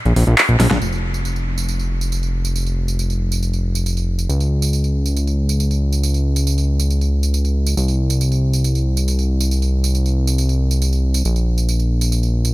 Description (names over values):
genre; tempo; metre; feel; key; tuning
uplifting trance; 138 BPM; 4/4; straight; unclear; A4 = 442 Hz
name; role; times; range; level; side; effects
fat analog bass; bass; 0.1-12.5 s; F1 to Db2; -16 LUFS; equal; none
big-room dance drum kit; drums; 0.1-12.5 s; handclaps, hi-hat, snare drum, tambourine, toms; -23 LUFS; right 2 dB; overdrive
room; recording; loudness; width
little or no reverb; none; -16 LUFS; side -19 dB against mid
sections
0.8-12.5 A section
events
drum fill 0.6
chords
none